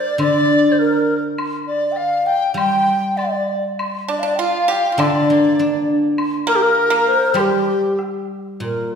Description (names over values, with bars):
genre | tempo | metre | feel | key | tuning
chinese traditional, Chinese chamber ensemble | 100 BPM | 2/4 | rubato | G yu mode | A4 = 441 Hz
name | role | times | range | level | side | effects
low xiao | melody | 0.0-8.9 s | G4 to G5 | -20 LUFS | right 1 dB | none
bright reedy large dizi | second line | 0.0-8.0 s | G4 to G5 | -21 LUFS | left 3 dB | none
guzheng | accompaniment | 0.2-9.0 s | Bb2 to D4 | -20 LUFS | equal | none
woodblock | percussion | 0.2-8.1 s | none | -28 LUFS | left 2 dB | none
pipa | second line | 4.1-7.9 s | G3 to G4 | -22 LUFS | right 5 dB | none
room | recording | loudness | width
wet scoring stage reverb, RT60 1.6 s | heard from further back in the room | -15 LUFS | side -6 dB against mid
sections
0.0-8.6 A section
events
none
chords
none